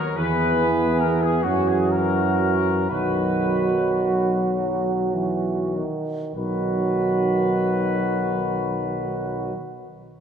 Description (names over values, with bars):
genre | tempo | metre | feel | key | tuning
classical, hymn-like piece for brass band | 32-49 BPM (dotted quarters) | 6/8 | rubato | B major | A4 = 440 Hz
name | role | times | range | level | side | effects
warm trumpet section | melody | 0.0-9.5 s | F#4 to B4 | -28 LUFS | left 5 dB | none
mellow flugelhorn | second line | 0.1-9.5 s | F#4 to G#4 | -26 LUFS | right 9 dB | none
mellow euphonium | accompaniment | 0.2-9.5 s | F#3 to B3 | -26 LUFS | left 2 dB | none
warm trombone | accompaniment | 0.2-9.5 s | D#3 to F#3 | -28 LUFS | right 2 dB | none
dark tuba | bass | 0.2-9.5 s | B1 to F#2 | -27 LUFS | equal | none
room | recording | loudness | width
wet concert hall reverb, RT60 2.5 s | minimal, uncompressed stereo recording | -20 LUFS | side -7 dB against mid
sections
0.0-6.4 A section; 6.4-9.8 B section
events
slowing down 0.0-6.4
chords
0.2 E; 1.4 F#7; 2.9 B